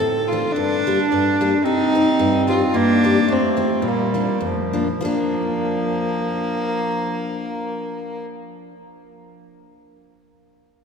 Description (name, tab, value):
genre	alpine folk, alpine dance band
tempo	96-110 BPM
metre	2/4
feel	swing 55% on 8ths, rubato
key	Bb major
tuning	A4 = 440 Hz
part	rich fiddle	melody	0.0-8.2 s	Bb3 to A4	-22 LUFS	left 1 dB	none
part	bright clarinet	second line	0.0-8.2 s	F3 to D4	-21 LUFS	right 3 dB	none
part	picked steel-string acoustic guitar	accompaniment	0.0-8.7 s	F2 to Eb4	-24 LUFS	left 3 dB	none
room	wet cathedral reverb, RT60 5.0 s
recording	recorded in a church or concert hall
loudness	-17 LUFS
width	side -6 dB against mid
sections	0.0-5.0 A section; 5.0-7.5 B section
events	slowing down 2.8-5.0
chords	0.0 Dm7; 0.6 Gm; 1.7 Cm; 2.8 Gm; 3.3 F; 3.8 Bb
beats	| 0.55 1.11 | 1.66 2.20 | 2.75 3.29 | 3.85 4.43 | 5.04 5.65 | 6.25 6.86